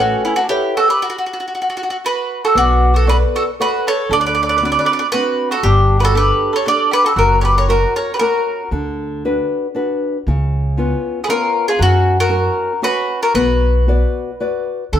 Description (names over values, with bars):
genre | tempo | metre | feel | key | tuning
italian folk, Italian serenade | 116 BPM | 3/4 | straight | B minor | A4 = 439 Hz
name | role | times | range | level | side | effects
bowl-back mandolin | melody | 0.0-8.7, 11.2-15.0 s | E4 to D5 | -16 LUFS | right 1 dB | none
mandolin | second line | 0.0-8.7, 11.2-14.6 s | C#4 to B4 | -21 LUFS | right 1 dB | none
nylon-string guitar | accompaniment | 0.0-15.0 s | C#3 to D5 | -21 LUFS | left 2 dB | none
upright bass | bass | 0.0-0.1, 2.6-15.0 s | F#1 to F#2 | -16 LUFS | equal | none
room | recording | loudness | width
moderate stone room reverb, RT60 1.1 s | band playing live in one room | -14 LUFS | side -10 dB against mid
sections
0.0-2.6 A section; 2.6-14.9 B section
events
stop 1.0-2.6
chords
0.0 Aadd9; 1.0 N.C.; 2.6 Bm7; 4.1 D7; 5.6 Gsus2; 7.2 F#; 8.7 D6; 10.3 C#7; 11.8 F#; 13.3 Bm